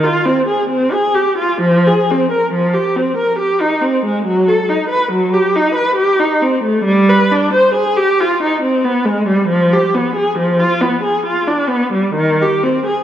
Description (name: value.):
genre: classical, baroque-style suite movement for unaccompanied viola.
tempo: 68 BPM.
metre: 3/4.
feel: rubato.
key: unclear.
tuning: A4 = 439 Hz.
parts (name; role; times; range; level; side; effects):
warm viola; solo; 0.0-13.0 s; Eb3 to C5; -12 LUFS; equal; none.
room: wet concert hall reverb, RT60 2.0 s.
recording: dark, warm production.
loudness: -12 LUFS.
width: side -11 dB against mid.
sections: 0.0-13.0 A section.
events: none.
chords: none.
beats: 0.68 | 1.61 2.51 3.39 | 4.25 5.12 5.98 | 6.87 7.76 8.64 | 9.50 10.37 11.24 | 12.16.